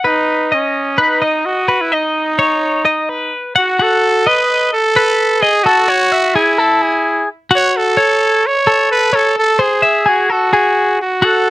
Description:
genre	rock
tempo	129 BPM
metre	4/4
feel	straight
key	unclear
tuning	A4 = 439 Hz
part	twelve-string electric guitar	arpeggios	0.0-11.5 s	F#4 to F#5	-14 LUFS	left 2 dB	none
part	growling trumpet	melody	0.1-11.5 s	C#4 to C#5	-14 LUFS	right 2 dB	slapback echo
room	little or no reverb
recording	dry, close 1970s-style studio recording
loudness	-11 LUFS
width	side -16 dB against mid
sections	0.0-3.8 A section; 3.8-11.5 B section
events	none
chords	0.0 Badd9; 3.8 B7; 5.7 Amaj7; 7.5 F#m; 9.4 Am6

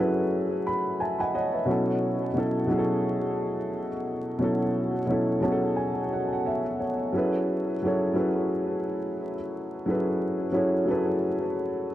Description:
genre	hip hop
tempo	88 BPM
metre	4/4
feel	swing 56% on 16ths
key	F# minor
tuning	A4 = 440 Hz
part	dark upright piano	solo	0.0-11.9 s	B2 to B5	-24 LUFS	equal	cassette tape, ping-pong delay
room	moderate plate reverb, RT60 3.0 s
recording	dreamy mix soaked in reverb, vinyl crackle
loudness	-24 LUFS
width	side -13 dB against mid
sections	0.0-11.9 A section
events	none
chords	0.0 F#m11; 1.7 B9sus4; 7.1 F#m11

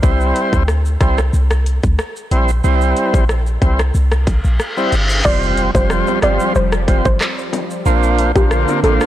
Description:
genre	dancehall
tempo	92 BPM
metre	4/4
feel	straight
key	unclear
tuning	A4 = 440 Hz
part	tonewheel organ	accompaniment	0.0-9.1 s	G3 to C5	-18 LUFS	right 1 dB	overdrive, slow rotary speaker
part	clean 808-style bass	bass	0.0-9.0 s	F1 to D2	-16 LUFS	equal	none
part	island pop drum kit	drums	0.0-9.1 s	crash cymbal, handclaps, hi-hat, kick drum, rim click, shaker	-19 LUFS	equal	soft clipping on snare
part	reverse cymbal and impact	sound effects	4.3-7.9 s	none	-23 LUFS	left 1 dB	none
part	soft round pluck	melody	5.2-9.0 s	G4 to D5	-20 LUFS	equal	chorus, digital delay
part	lush unison pad	sustained chords	5.7-9.1 s	D3 to C4	-23 LUFS	right 1 dB	chorus, phaser, sidechain pumping
part	bongos	percussion	6.1-9.0 s	none	-26 LUFS	left 6 dB	none
room	light reverb, digital ambience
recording	blown-out, overdriven recording, overdrive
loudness	-13 LUFS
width	side -13 dB against mid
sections	0.0-5.2 A section; 5.2-9.1 B section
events	reverse cymbal 4.3-5.2; impact 5.2-7.9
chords	0.0 C; 5.2 Fsus2; 7.9 Bbadd9

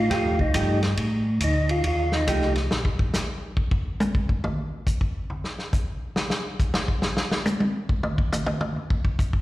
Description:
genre	soul jazz organ trio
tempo	139 BPM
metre	4/4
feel	swing 65% on 8ths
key	F mixolydian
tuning	A4 = 439 Hz
part	percussive tonewheel organ	melody	0.0-2.5 s	Eb4 to F4	-26 LUFS	equal	slow rotary speaker, slapback echo
part	mellow tonewheel organ	bass	0.0-3.0 s	Bb1 to A2	-24 LUFS	equal	chorus vibrato, slow rotary speaker
part	vintage hollow-body jazz guitar	accompaniment	0.1-2.5 s	F3 to G4	-27 LUFS	right 2 dB	slapback echo
part	warm soul drum kit	drums	0.1-9.4 s	hi-hat, kick drum, ride cymbal, snare drum, toms	-24 LUFS	equal	none
room	light reverb, small room ambience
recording	live gig heard through the venue's PA, recital hall reverb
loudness	-22 LUFS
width	side -17 dB against mid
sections	0.0-9.4 A section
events	tonewheel organ solo 0.0-9.4; drum solo 2.7-9.4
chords	0.0 F9; 2.7 N.C.

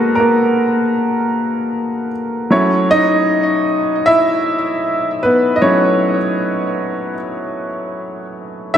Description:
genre	R&B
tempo	77 BPM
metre	4/4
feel	swing 60% on 16ths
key	unclear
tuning	A4 = 440 Hz
part	bright baby grand piano	solo	0.0-8.8 s	F#3 to E5	-14 LUFS	equal	ping-pong delay
room	wet plate reverb, RT60 2.9 s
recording	dreamy mix soaked in reverb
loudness	-13 LUFS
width	side -9 dB against mid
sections	0.0-8.8 A section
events	grand piano solo 0.0-8.8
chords	0.0 G#m9; 2.5 F#m7

